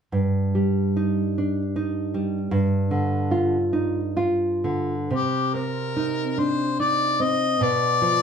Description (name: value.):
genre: romantic duo for harmonica and classical guitar.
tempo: 60-80 BPM.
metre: 3/4.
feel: rubato.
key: C minor.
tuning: A4 = 440 Hz.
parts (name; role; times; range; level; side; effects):
nylon-string guitar; accompaniment; 0.1-8.2 s; G2 to F4; -22 LUFS; right 1 dB; none.
clear harmonica; melody; 5.1-8.2 s; G4 to Eb5; -22 LUFS; left 4 dB; none.
room: wet studio ambience, RT60 0.5 s.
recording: band playing live in one room.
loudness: -21 LUFS.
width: side -7 dB against mid.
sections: 0.1-5.1 A section; 5.1-8.2 B section.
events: none.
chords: 0.1 Ebmaj7/G; 2.5 G5; 5.1 Cm; 7.6 Bdim.